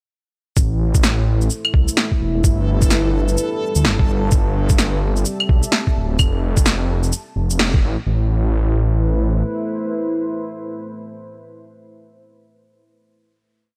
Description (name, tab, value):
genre	future garage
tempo	128 BPM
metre	4/4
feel	swing 62% on 16ths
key	A minor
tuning	A4 = 439 Hz
part	deep dark ambient pad	sustained chords	1.3-11.8 s	G3 to E5	-28 LUFS	equal	chorus, built-in reverb, sidechain pumping
part	swelling detuned saw bass	bass	0.6-9.4 s	D1 to D2	-20 LUFS	equal	sidechain pumping
part	electronic kick drum	drums	0.6-7.8 s	none	-18 LUFS	equal	none
part	electronic shaker, snare drum and claves	drums	0.6-7.7 s	none	-23 LUFS	equal	overdrive
part	backwards swelling texture	texture	2.6-6.2 s	A4	-34 LUFS	equal	built-in reverb
room	little or no reverb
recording	none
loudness	-18 LUFS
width	mono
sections	0.6-8.1 groove; 8.1-11.8 final chord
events	band accent 7.6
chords	0.6 Amadd9; 2.4 G; 4.3 Cmaj7/G; 6.2 F; 8.1 Amadd9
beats	| 0.56 1.03 1.50 1.97 | 2.44 2.91 3.38 3.85 | 4.32 4.78 5.25 5.72 | 6.19 6.66 7.13 7.60 | 8.06 8.53 9.00 9.47 | 9.94 10.41 10.88 11.35